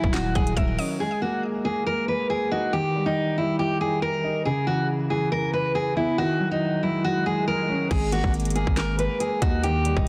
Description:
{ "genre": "hip hop, trap", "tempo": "139 BPM", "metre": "4/4", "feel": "half-time", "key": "G# minor", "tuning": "A4 = 440 Hz", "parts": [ { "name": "fingerpicked steel-string acoustic guitar", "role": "melody", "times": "0.0-10.1 s", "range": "D#4 to B4", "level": "-27 LUFS", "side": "equal", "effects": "low-pass filter" }, { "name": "mallet-like synth pluck", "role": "second line", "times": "0.0-1.0 s", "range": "D#5 to G#5", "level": "-39 LUFS", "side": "equal", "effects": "chorus, digital delay" }, { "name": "dark concert grand piano", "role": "accompaniment", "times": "0.0-10.1 s", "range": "C#3 to D#4", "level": "-30 LUFS", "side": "equal", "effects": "low-pass filter" }, { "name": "growling 808-style bass", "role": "bass", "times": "0.0-0.8, 7.9-10.1 s", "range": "D#1 to D#2", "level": "-29 LUFS", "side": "equal", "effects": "none" }, { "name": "trap drum kit", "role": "drums", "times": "0.0-0.9, 7.9-10.1 s", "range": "crash cymbal, handclaps, hi-hat, kick drum, snare drum", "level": "-28 LUFS", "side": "equal", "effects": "none" }, { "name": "swell", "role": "sound effects", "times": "7.0-7.9 s", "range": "none", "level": "-40 LUFS", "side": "equal", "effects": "none" } ], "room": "light reverb, digital ambience", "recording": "dense, heavily limited modern master", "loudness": "-24 LUFS", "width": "mono", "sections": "0.0-1.0 A section; 1.0-7.9 B section; 7.9-10.1 C section", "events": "swell 7.0-7.9", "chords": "0.0 D#m7; 1.0 G#sus2; 2.7 D#; 4.5 C#m7; 6.2 D#m7; 7.9 G#sus2" }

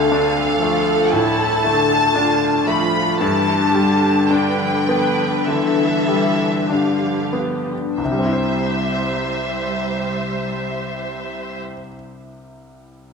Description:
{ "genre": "cinematic, emotional film score for orchestra", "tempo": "46-61 BPM", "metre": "4/4", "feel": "rubato", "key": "C major", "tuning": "A4 = 440 Hz", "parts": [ { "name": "rich studio violin section", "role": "melody", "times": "0.0-11.6 s", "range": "E5 to B5", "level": "-22 LUFS", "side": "left 1 dB", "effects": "none" }, { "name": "bright grand piano", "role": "accompaniment", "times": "0.0-13.1 s", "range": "C2 to C5", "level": "-22 LUFS", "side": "left 1 dB", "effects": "none" }, { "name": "rich studio viola section", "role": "accompaniment", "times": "0.0-11.6 s", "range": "D3 to C5", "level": "-22 LUFS", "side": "right 3 dB", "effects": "none" }, { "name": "concert harp", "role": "arpeggios", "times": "0.0-11.9 s", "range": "G2 to C5", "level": "-22 LUFS", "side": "left 5 dB", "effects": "none" } ], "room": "wet scoring stage reverb, RT60 1.6 s", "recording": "none", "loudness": "-16 LUFS", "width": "side -5 dB against mid", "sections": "0.0-8.0 A section; 8.0-13.1 B section", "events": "slowing down 0.0-8.0", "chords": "0.0 Dm; 3.2 G; 8.0 C" }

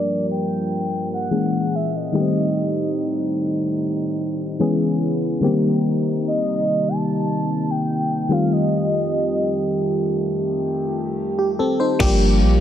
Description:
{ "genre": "contemporary R&B", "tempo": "73 BPM", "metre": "4/4", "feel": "straight", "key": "unclear", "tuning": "A4 = 438 Hz", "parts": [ { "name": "mellow horn-like synth lead", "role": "melody", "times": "0.0-10.2 s", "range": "D5 to A5", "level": "-26 LUFS", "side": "right 1 dB", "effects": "chorus, tape echo" }, { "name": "FM electric piano", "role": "accompaniment", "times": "0.0-12.6 s", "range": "D3 to C5", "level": "-21 LUFS", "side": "left 2 dB", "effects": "chorus" }, { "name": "mellow French horn section", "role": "sustained chords", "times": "0.0-12.6 s", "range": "F2 to F5", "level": "-25 LUFS", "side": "right 3 dB", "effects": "none" }, { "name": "clean 808-style bass", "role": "bass", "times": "12.0-12.6 s", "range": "G1 to Bb1", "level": "-17 LUFS", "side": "equal", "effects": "none" }, { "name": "trap drum kit", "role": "drums", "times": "12.0-12.2 s", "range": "crash cymbal, kick drum", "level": "-22 LUFS", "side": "equal", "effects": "none" } ], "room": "light reverb", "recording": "dense, heavily limited modern master, low-pass filter", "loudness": "-18 LUFS", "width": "side -10 dB against mid", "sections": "0.0-12.0 A section", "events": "filter sweep 0.0-12.0", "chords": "0.0 Gm7; 1.3 A#m7b5; 2.1 Am7b5; 4.6 C#m7; 5.4 Cm7; 8.3 F9; 12.0 Gm7" }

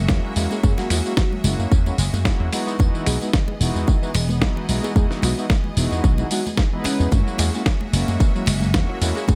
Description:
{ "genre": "nu-disco, nu disco", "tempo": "111 BPM", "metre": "4/4", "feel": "swing 55% on 16ths", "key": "F# mixolydian", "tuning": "A4 = 439 Hz", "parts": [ { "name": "bright studio string section", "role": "sustained chords", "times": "0.0-9.4 s", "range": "E3 to E5", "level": "-36 LUFS", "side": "equal", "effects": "sidechain pumping" }, { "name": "analog pluck", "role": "arpeggios", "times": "0.0-9.4 s", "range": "D#3 to B3", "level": "-35 LUFS", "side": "equal", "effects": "none" }, { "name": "slap bass", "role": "bass", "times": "0.0-9.4 s", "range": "E1 to F#2", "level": "-24 LUFS", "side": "equal", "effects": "none" }, { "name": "mellow synth brass", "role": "accompaniment", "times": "0.1-9.4 s", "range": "G#3 to B4", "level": "-30 LUFS", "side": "equal", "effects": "chorus, cassette tape, sidechain pumping, slapback echo" }, { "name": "dusty soul sampler-style drum kit", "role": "drums", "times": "0.1-9.4 s", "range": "finger snaps, hi-hat, ride cymbal, snare drum, tambourine", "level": "-29 LUFS", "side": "equal", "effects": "none" }, { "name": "electronic kick drum", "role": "drums", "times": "0.1-9.4 s", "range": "none", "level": "-21 LUFS", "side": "equal", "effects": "none" }, { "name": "congas", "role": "percussion", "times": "0.1-9.4 s", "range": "none", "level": "-33 LUFS", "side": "equal", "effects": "none" }, { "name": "soft octave-layered synth lead", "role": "melody", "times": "0.5-9.4 s", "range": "C#4 to G#4", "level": "-32 LUFS", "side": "equal", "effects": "chorus, tremolo, tape echo" } ], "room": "digital ambience", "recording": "none", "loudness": "-20 LUFS", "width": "mono", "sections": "0.0-9.4 A section", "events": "none", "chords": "0.0 F#9; 2.5 Emaj7; 7.1 F#9" }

